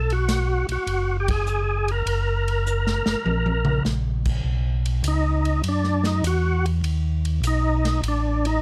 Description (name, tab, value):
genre	soul jazz organ trio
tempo	101 BPM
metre	4/4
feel	swing 69% on 8ths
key	unclear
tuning	A4 = 440 Hz
part	percussive tonewheel organ	melody	0.0-8.6 s	D4 to A#4	-27 LUFS	equal	slow rotary speaker, overdrive, chorus vibrato
part	mellow tonewheel organ	bass	0.0-8.6 s	F#1 to F#2	-25 LUFS	equal	slow rotary speaker
part	swinging big-band drum kit	drums	0.1-8.5 s	crash cymbal, hi-hat, kick drum, ride cymbal, snare drum, toms	-31 LUFS	equal	none
room	little or no reverb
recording	close, detailed microphones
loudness	-23 LUFS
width	mono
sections	0.0-4.5 A section; 4.5-8.6 B section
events	band accent 1.2; drum fill 2.7-3.9; tonewheel organ solo 4.5-8.6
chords	0.0 B5; 2.1 F#; 4.5 B9